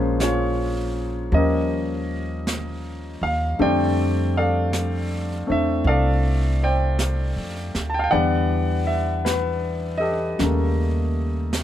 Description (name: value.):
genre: jazz ballad.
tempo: 53 BPM.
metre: 4/4.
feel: swing 68% on 8ths.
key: unclear.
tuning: A4 = 445 Hz.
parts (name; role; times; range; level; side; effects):
warm concert grand piano; accompaniment; 0.0-11.6 s; Db3 to A5; -22 LUFS; left 1 dB; none.
upright bass; bass; 0.0-11.6 s; Bb1 to F2; -24 LUFS; equal; none.
jazz brush drum kit; drums; 0.2-11.6 s; brushed snare drum, hi-hat, snare drum; -32 LUFS; right 2 dB; none.
room: little or no reverb.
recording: close, detailed microphones.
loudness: -20 LUFS.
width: side -11 dB against mid.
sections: 0.0-11.6 A section.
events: none.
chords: 0.0 Bbm7; 1.3 Eb9; 3.6 F6; 8.1 Em7; 10.4 Eb7#11.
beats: 0.19 1.32 2.45 | 3.58 4.71 5.85 6.98 | 8.12 9.25 10.39 11.53.